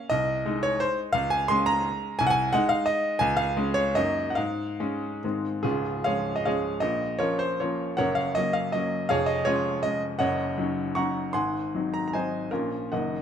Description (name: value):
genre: classical, romantic triple-time dance for piano with dotted rhythms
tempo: 131-184 BPM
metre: 3/4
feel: rubato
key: Db major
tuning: A4 = 440 Hz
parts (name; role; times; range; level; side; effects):
- clear baby grand piano; solo; 0.0-13.2 s; Db1 to Db6; -24 LUFS; equal; none
room: moderate large studio reverb, RT60 1.4 s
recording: close, detailed microphones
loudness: -24 LUFS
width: side -8 dB against mid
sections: 0.0-5.6 A section; 5.6-13.2 B section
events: none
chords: 0.1 Ab/C; 1.1 Db5; 2.2 Ab/C; 3.2 Db; 4.0 Ebm/Gb; 4.4 Db/Ab; 5.2 Ab; 5.6 Db; 6.8 Bbm; 8.0 Gb; 9.1 Db/F; 10.2 Ebm7/Gb; 11.3 Ab7; 12.5 Bbm